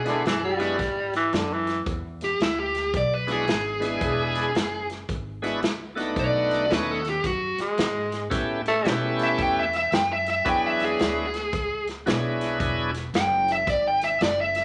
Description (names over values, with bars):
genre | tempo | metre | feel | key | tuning
electric blues shuffle | 112 BPM | 4/4 | swing 64% on 8ths | E mixolydian | A4 = 442 Hz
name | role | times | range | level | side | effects
dark smooth lead guitar | melody | 0.0-14.6 s | E4 to G5 | -27 LUFS | equal | overdrive
bright tonewheel organ | accompaniment | 0.0-12.9 s | F#3 to G#4 | -29 LUFS | equal | slow rotary speaker, overdrive
upright bass | bass | 0.0-14.6 s | E1 to B2 | -36 LUFS | equal | none
growling tenor saxophone | second line | 0.1-1.8, 7.6-9.0 s | D3 to A3 | -28 LUFS | equal | none
natural country drum kit | drums | 0.1-14.6 s | hi-hat, kick drum, snare drum | -32 LUFS | equal | none
room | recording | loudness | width
moderate large studio reverb, RT60 1.2 s | nothing above 10.5 kHz | -25 LUFS | mono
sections
0.0-14.6 A section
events
none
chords
0.0 E9; 6.2 B9; 8.3 A9; 10.5 E9